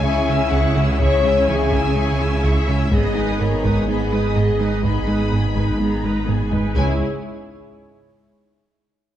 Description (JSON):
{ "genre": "cinematic, hybrid orchestral and electronic film score", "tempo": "125 BPM", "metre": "4/4", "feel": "straight", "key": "C# minor", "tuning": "A4 = 440 Hz", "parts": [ { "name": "rich chamber violin section", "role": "melody", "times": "0.0-7.0 s", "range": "B4 to B5", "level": "-31 LUFS", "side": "left 4 dB", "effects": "none" }, { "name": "rich studio violin section", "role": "second line", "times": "0.0-7.0 s", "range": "G#4 to E6", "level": "-30 LUFS", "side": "left 3 dB", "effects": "none" }, { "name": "rich symphonic viola section", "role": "accompaniment", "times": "0.0-7.0 s", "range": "B3 to B4", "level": "-28 LUFS", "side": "right 1 dB", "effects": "none" }, { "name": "mellow French horn section", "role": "sustained chords", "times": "0.0-7.0 s", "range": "C#4 to E5", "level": "-24 LUFS", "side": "left 4 dB", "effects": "none" }, { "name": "warm analog pad", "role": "sustained chords", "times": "0.0-7.0 s", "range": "G#3 to C#5", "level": "-28 LUFS", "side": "right 1 dB", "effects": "chorus" }, { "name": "soft round pluck", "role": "arpeggios", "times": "0.0-6.7 s", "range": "C#3 to D#4", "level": "-30 LUFS", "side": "left 4 dB", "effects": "chorus" }, { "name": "round analog bass", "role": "riff", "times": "0.0-6.7 s", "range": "C#2 to G#3", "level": "-23 LUFS", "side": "right 2 dB", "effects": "none" }, { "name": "rich studio double bass section", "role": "bass", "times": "0.0-7.0 s", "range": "G#1 to C#2", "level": "-26 LUFS", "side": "right 3 dB", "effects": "none" }, { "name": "sub bass with octave", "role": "bass", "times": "0.0-7.0 s", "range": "G#1 to C#2", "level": "-25 LUFS", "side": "equal", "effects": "none" }, { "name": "warm symphonic cello section", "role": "bass", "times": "0.0-7.0 s", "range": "C#2 to C#3", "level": "-26 LUFS", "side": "right 4 dB", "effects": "none" }, { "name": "taiko ensemble", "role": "drums", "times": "1.0-7.7 s", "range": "none", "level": "-26 LUFS", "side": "equal", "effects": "none" } ], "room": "moderate scoring stage reverb, RT60 1.7 s", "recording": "worn, warbling old tape, cassette tape, warbly pitch drift", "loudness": "-16 LUFS", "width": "side -11 dB against mid", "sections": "0.0-6.8 A section; 6.8-8.7 B section", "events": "drum fill 6.0-6.8", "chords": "0.0 C#m; 2.9 G#m; 6.8 C#m" }